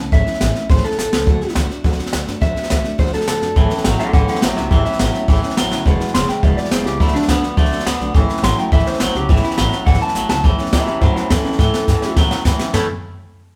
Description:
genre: rockabilly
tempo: 209 BPM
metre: 4/4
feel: straight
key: A mixolydian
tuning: A4 = 439 Hz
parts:
  - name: picked steel-string acoustic guitar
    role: accompaniment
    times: 0.0-12.9 s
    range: E2 to F#4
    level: -28 LUFS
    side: equal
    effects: none
  - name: upright bass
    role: bass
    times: 0.0-12.9 s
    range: E1 to A2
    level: -24 LUFS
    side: equal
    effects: none
  - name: electric guitar through a small old amp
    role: melody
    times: 0.1-12.9 s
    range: C#4 to C6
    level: -24 LUFS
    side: equal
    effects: none
  - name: jazz brush drum kit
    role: drums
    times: 0.1-12.8 s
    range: hi-hat, kick drum, snare drum, toms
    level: -19 LUFS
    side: equal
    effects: none
  - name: twangy electric guitar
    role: riff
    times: 3.6-12.9 s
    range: E2 to E4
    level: -24 LUFS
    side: equal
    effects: none
room: light reverb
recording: band playing live in one room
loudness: -17 LUFS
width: mono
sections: 0.0-10.4 A section; 10.4-12.7 B section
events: drum fill 1.0, 5.7, 10.2, 11.6-12.7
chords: 0.0 A; 1.3 D; 3.6 A; 5.9 E; 7.0 D; 8.2 A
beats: | 0.12 0.41 0.70 0.98 | 1.27 1.56 1.84 2.13 | 2.42 2.71 2.99 3.28 | 3.56 3.85 4.14 4.42 | 4.71 5.00 5.28 5.57 | 5.86 6.14 6.43 6.72 | 7.00 7.29 7.58 7.86 | 8.15 8.44 8.72 9.01 | 9.30 9.59 9.87 10.16 | 10.45 10.73 11.02 11.31 | 11.59 11.88 12.17 12.46 | 12.74

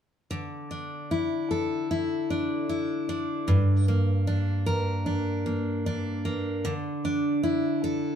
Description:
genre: pop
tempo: 76 BPM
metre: 4/4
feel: straight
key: unclear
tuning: A4 = 440 Hz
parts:
  - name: picked steel-string acoustic guitar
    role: accompaniment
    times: 0.3-8.2 s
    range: G2 to Bb4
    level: -25 LUFS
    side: equal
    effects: none
room: moderate studio reverb, RT60 0.8 s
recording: band playing live in one room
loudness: -25 LUFS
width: side -8 dB against mid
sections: 0.3-8.2 A section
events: none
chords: 0.3 Dsus2; 3.5 Gm; 6.7 Dsus2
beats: | 0.32 1.11 1.90 2.70 | 3.49 4.28 5.07 5.87 | 6.66 7.45

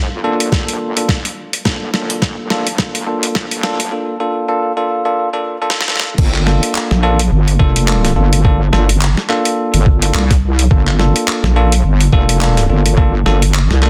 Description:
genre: glitch hop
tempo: 106 BPM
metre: 4/4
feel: swing 57% on 16ths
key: G minor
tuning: A4 = 440 Hz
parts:
  - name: wobble bass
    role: bass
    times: 0.0-13.9 s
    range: F1 to C2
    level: -16 LUFS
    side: equal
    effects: chorus, tube saturation, high-pass filter
  - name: bell-like tine electric piano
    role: stabs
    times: 0.2-13.9 s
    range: Bb3 to A4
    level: -21 LUFS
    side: equal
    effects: sidechain pumping, low-pass filter, tape echo
  - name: boom bap sampler-style drum kit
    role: drums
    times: 0.4-13.9 s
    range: crash cymbal, handclaps, hi-hat, snare drum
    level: -21 LUFS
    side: equal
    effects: small room ambience, soft clipping on snare
  - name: electronic kick drum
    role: drums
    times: 0.5-13.1 s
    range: none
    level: -16 LUFS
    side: equal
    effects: small room ambience
room: light reverb, digital ambience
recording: dense, heavily limited modern master, high-pass filter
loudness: -14 LUFS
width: mono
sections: 0.0-6.2 A section; 6.2-13.9 B section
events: build-up 0.0-6.2; drum fill 0.0-3.9, 5.6-6.2; drop 6.2-13.9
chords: 0.0 Gm7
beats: 0.52 1.09 | 1.66 2.22 2.79 3.35 | 3.92 4.49 5.05 5.62 | 6.18 6.75 7.32 7.88 | 8.45 9.01 9.58 10.15 | 10.71 11.28 11.84 12.41 | 12.98 13.54

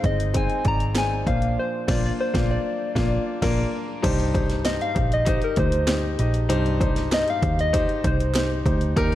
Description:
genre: piano-driven pop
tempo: 98 BPM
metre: 4/4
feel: straight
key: unclear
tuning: A4 = 438 Hz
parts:
  - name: soft struck synth lead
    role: melody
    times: 0.0-8.6 s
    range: Bb4 to Bb5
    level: -26 LUFS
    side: left 1 dB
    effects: chorus
  - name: warm concert grand piano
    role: accompaniment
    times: 0.0-9.2 s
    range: G2 to Eb5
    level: -26 LUFS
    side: left 2 dB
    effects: none
  - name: vintage muted picked electric bass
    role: bass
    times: 0.0-9.2 s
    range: G1 to Eb2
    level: -24 LUFS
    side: equal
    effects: none
  - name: house drum kit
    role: drums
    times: 0.0-9.2 s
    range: crash cymbal, hi-hat, kick drum, snare drum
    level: -26 LUFS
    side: equal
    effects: overdrive
  - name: group handclap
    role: percussion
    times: 1.0-8.5 s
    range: none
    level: -39 LUFS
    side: right 6 dB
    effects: none
room: light reverb, digital ambience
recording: dark, warm production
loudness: -20 LUFS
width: side -13 dB against mid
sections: 0.0-4.0 A section; 4.0-9.2 B section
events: band accent 1.6-4.0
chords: 0.0 Ab; 1.3 Bbadd9; 4.0 Cm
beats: 0.35 0.96 | 1.58 2.19 2.81 3.43 | 4.04 4.66 5.27 5.89 | 6.50 7.12 7.73 8.35 | 8.96

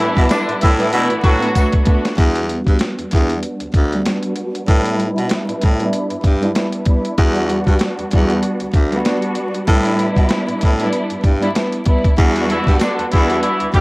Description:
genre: hip hop, boom-bap hip-hop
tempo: 96 BPM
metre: 4/4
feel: swing 57% on 16ths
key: E minor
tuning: A4 = 440 Hz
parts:
  - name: warm studio string section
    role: accompaniment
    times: 0.0-13.7 s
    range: G3 to F#4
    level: -19 LUFS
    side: equal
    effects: cassette tape, high-pass filter, low-pass filter
  - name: clear horn section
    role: stabs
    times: 0.0-1.7, 12.5-13.8 s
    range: D3 to G4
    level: -20 LUFS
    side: equal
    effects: high-pass filter, low-pass filter, cassette tape, analog delay
  - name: growling baritone saxophone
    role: bass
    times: 0.0-13.8 s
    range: D2 to B2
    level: -19 LUFS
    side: equal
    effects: none
  - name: boom bap sampler-style drum kit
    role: drums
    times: 0.0-13.8 s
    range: hi-hat, kick drum, snare drum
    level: -16 LUFS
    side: equal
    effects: cassette tape
  - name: tambourine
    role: percussion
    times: 0.3-1.7, 12.8-13.0 s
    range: none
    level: -38 LUFS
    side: left 4 dB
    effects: none
room: light reverb, small room ambience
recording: home recording on cassette, vinyl crackle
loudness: -14 LUFS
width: side -24 dB against mid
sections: 0.0-2.2 A section; 2.2-12.2 B section; 12.2-13.8 C section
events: drum fill 1.6-2.2; filter sweep on string section 2.2-12.2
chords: 0.0 A9sus4; 0.9 Bm7; 2.2 Em7; 4.7 A9sus4; 7.2 Em7; 9.7 A9sus4; 12.2 Em7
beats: 0.31 0.93 1.56 | 2.18 2.81 3.43 4.06 | 4.68 5.31 5.93 6.56 | 7.18 7.81 8.43 9.06 | 9.68 10.31 10.93 11.56 | 12.18 12.81 13.43

